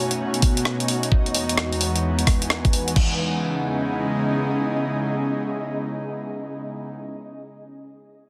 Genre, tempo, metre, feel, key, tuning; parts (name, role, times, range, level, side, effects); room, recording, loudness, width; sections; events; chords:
UK garage, two-step garage; 130 BPM; 4/4; swing 64% on 16ths; C# minor; A4 = 440 Hz
airy breathy pad; sustained chords; 0.0-6.9 s; E2 to F#4; -29 LUFS; equal; chorus, sidechain pumping
ethereal airy pad; texture; 0.0-7.1 s; E3 to G#5; -30 LUFS; equal; ensemble chorus, built-in reverb, sidechain pumping
breakbeat sampler-style drum kit; drums; 0.1-3.1 s; crash cymbal, hi-hat, rim click; -27 LUFS; equal; soft clipping on snare
electronic kick drum; drums; 0.4-3.1 s; -21 LUFS; equal; overdrive
moderate studio reverb, RT60 0.5 s; dense, heavily limited modern master; -23 LUFS; mono
0.0-3.0 A section; 3.0-6.7 B section
0.0 B7; 1.1 Emaj7; 3.0 C#m7